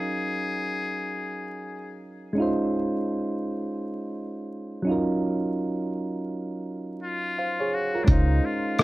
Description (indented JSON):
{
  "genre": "lo-fi hip hop",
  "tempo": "84 BPM",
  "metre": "4/4",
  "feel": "swing 60% on 16ths",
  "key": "unclear",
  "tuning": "A4 = 440 Hz",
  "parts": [
    { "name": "trumpet with metal mute", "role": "melody", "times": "0.0-2.0, 7.0-8.8 s", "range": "D4 to Ab4", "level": "-30 LUFS", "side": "left 3 dB", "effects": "low-pass filter" },
    { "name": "soft electric-piano-like synth keys", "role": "accompaniment", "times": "0.0-8.8 s", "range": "Gb3 to F5", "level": "-27 LUFS", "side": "right 1 dB", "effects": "chorus, cassette tape, low-pass filter" },
    { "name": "vintage muted fingered electric bass", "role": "bass", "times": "8.1-8.4 s", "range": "Db2", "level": "-21 LUFS", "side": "equal", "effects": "none" },
    { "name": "lo-fi sampler-style drum kit", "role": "drums", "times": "8.1-8.8 s", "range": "hi-hat, kick drum, rim click", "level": "-19 LUFS", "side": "equal", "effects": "none" }
  ],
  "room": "moderate small room reverb, RT60 0.6 s",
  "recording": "dark, warm production, vinyl crackle",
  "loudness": "-25 LUFS",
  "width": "side -18 dB against mid",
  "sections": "0.0-8.1 A section",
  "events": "none",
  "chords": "0.0 Ebm9; 2.4 Dbmaj9; 4.9 Ebm9; 8.1 Dbmaj9"
}